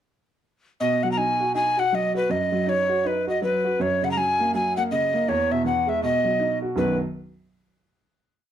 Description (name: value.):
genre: celtic folk, Celtic hornpipe.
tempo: 161 BPM.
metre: 4/4.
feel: swing 61% on 8ths.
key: B major.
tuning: A4 = 440 Hz.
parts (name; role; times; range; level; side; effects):
breathy alto recorder; melody; 0.8-7.0 s; B4 to A#5; -22 LUFS; left 1 dB; none.
clear baby grand piano; accompaniment; 0.8-7.0 s; B1 to F#4; -25 LUFS; right 2 dB; none.
room: moderate studio reverb, RT60 0.5 s.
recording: dark, warm production.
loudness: -21 LUFS.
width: side -10 dB against mid.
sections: 0.8-6.8 A section; 6.8-8.3 final chord.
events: none.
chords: 0.8 B; 3.8 F#; 5.3 E; 6.0 B.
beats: | 0.80 1.18 1.55 1.92 | 2.30 2.67 3.04 3.42 | 3.79 4.16 4.54 4.91 | 5.28 5.65 6.02 6.39 | 6.77.